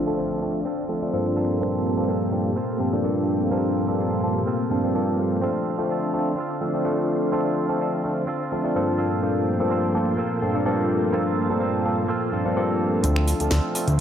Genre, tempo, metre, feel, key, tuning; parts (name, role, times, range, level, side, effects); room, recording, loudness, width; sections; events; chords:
filtered disco house; 126 BPM; 4/4; straight; G minor; A4 = 439 Hz
barky tine electric piano; accompaniment; 0.0-13.9 s; G2 to A4; -23 LUFS; equal; phaser, low-pass filter
string machine, full ensemble; sustained chords; 0.0-14.0 s; Bb3 to A5; -27 LUFS; equal; ensemble chorus, low-pass filter
direct-recorded clean electric guitar; riff; 0.0-14.0 s; Bb3 to A4; -31 LUFS; right 4 dB; spring reverb, low-pass filter
fat analog bass; bass; 13.0-14.0 s; D2; -20 LUFS; equal; low-pass filter
house drum kit; drums; 13.0-14.0 s; finger snaps, hi-hat, shaker, snare drum; -28 LUFS; equal; low-pass filter on snare, low-pass filter on hats, low-pass filter on perc
riser; sound effects; 13.8-14.0 s; -46 LUFS; equal
moderate lush hall reverb, RT60 1.8 s; -21 LUFS; side -9 dB against mid
0.0-13.0 A section
filter sweep 0.0-13.0
0.0 Gm11; 13.0 Dm7